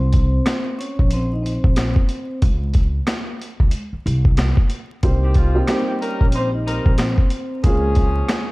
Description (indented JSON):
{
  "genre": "hip hop, boom-bap hip-hop",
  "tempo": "92 BPM",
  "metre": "4/4",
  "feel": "swing 60% on 16ths",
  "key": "C phrygian",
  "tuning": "A4 = 439 Hz",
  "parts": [
    { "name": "vibraphone with soft mallets", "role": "melody", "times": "0.0-7.6 s", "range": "C4 to Eb5", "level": "-26 LUFS", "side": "equal", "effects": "high-pass filter, low-pass filter, digital delay" },
    { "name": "upright bass", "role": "bass", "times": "0.0-8.2 s", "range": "Bb1 to Db2", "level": "-20 LUFS", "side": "equal", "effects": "none" },
    { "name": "boom bap sampler-style drum kit", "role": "drums", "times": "0.1-8.5 s", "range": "hi-hat, kick drum, rim click, snare drum", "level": "-18 LUFS", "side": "equal", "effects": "none" },
    { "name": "dark upright piano", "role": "accompaniment", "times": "5.0-8.5 s", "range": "G3 to Ab4", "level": "-25 LUFS", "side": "right 2 dB", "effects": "cassette tape, high-pass filter, low-pass filter" },
    { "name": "mellow horn section", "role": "stabs", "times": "5.2-8.5 s", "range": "Eb3 to C5", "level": "-27 LUFS", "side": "left 1 dB", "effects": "high-pass filter, low-pass filter, digital delay" }
  ],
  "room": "small room reverb",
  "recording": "dark, warm production, vinyl crackle",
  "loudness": "-16 LUFS",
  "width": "side -22 dB against mid",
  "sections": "0.0-8.5 A section",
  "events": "break 0.0-5.0",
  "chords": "0.0 C7(no3); 2.4 N.C.; 5.0 Cm7; 7.6 Db6",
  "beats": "0.47 1.12 1.77 | 2.42 3.08 3.73 4.38 | 5.03 5.68 6.34 6.99 | 7.64 8.29"
}